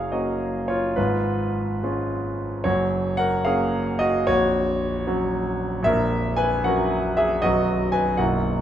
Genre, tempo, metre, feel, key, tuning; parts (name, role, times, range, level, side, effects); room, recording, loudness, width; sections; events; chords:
classical, romantic character piece for solo piano; 68-78 BPM (dotted quarters); 6/8; rubato; F# major; A4 = 439 Hz
clear concert grand piano; solo; 0.0-8.6 s; A#0 to G#5; -20 LUFS; equal
moderate recital hall reverb, RT60 1.3 s; minimal, uncompressed stereo recording; -20 LUFS; side -10 dB against mid
0.0-8.6 A section
0.0 F#; 1.0 C#7/G#; 2.7 F#; 4.3 F#/A#; 5.9 F#7/A#; 7.4 B